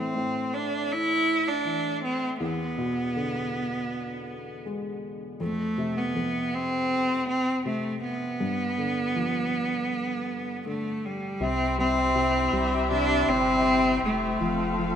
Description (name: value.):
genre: pop ballad.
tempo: 80 BPM.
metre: 4/4.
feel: straight.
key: unclear.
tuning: A4 = 436 Hz.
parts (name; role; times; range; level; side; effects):
clear cello; melody; 0.0-15.0 s; G3 to E4; -26 LUFS; right 1 dB; none.
felt-muted upright piano; accompaniment; 0.0-15.0 s; E2 to G#3; -33 LUFS; left 2 dB; none.
muted studio string section; sustained chords; 11.4-15.0 s; C4 to F5; -28 LUFS; left 3 dB; none.
saturated sub bass; bass; 11.4-15.0 s; E1 to C2; -33 LUFS; right 1 dB; none.
room: moderate plate reverb, RT60 3.6 s.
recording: rough home demo mix.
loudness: -24 LUFS.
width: side -8 dB against mid.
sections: 0.0-11.4 A section; 11.4-15.0 B section.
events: none.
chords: 0.0 A5; 2.4 E7; 5.4 F5; 8.4 G7; 11.4 C; 14.4 F.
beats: 0.16 0.91 1.66 | 2.41 3.16 3.91 4.66 | 5.41 6.16 6.91 7.66 | 8.41 9.16 9.91 10.66 | 11.41 12.16 12.91 13.66 | 14.41.